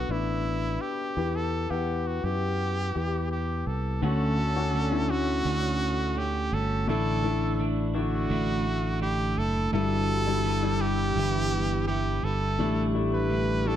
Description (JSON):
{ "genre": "piano-driven pop", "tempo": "84 BPM", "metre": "4/4", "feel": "straight", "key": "D major from 4.0 s", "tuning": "A4 = 440 Hz", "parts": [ { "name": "brilliant trumpet", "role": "melody", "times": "0.0-13.8 s", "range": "E4 to B4", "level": "-30 LUFS", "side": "right 1 dB", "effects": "none" }, { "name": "warm grand piano", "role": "accompaniment", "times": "0.0-13.8 s", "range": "G2 to F#5", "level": "-31 LUFS", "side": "left 7 dB", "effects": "none" }, { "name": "fingered electric bass", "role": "bass", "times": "0.0-13.8 s", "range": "F#1 to F#2", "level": "-29 LUFS", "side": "right 1 dB", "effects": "none" }, { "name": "mellow French horn section", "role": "second line", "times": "4.0-13.8 s", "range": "D3 to G4", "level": "-34 LUFS", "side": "right 3 dB", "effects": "ping-pong delay" }, { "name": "twelve-string electric guitar", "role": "riff", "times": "4.0-13.8 s", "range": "G2 to F#4", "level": "-33 LUFS", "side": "right 5 dB", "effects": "spring reverb" } ], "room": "light reverb, small room ambience", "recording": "dark, warm production", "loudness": "-25 LUFS", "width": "side -10 dB against mid", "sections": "0.0-4.0 A section; 4.0-13.8 B section", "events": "none", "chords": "0.0 Bm7; 1.2 Em; 4.0 Dmaj7; 6.9 Asus4; 9.7 Em7/G; 12.6 Asus4" }